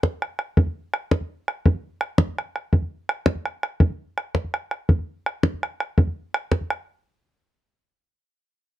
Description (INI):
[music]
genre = celtic folk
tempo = 111 BPM (dotted quarters)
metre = 6/8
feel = straight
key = none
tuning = none
[part]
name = bodhran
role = percussion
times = 0.0-6.8 s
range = none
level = -19 LUFS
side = equal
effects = none
[sound]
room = little or no reverb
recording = close, detailed microphones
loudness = -22 LUFS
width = side -13 dB against mid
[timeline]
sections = 0.0-7.0 A section; 7.0-8.1 B section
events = none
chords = none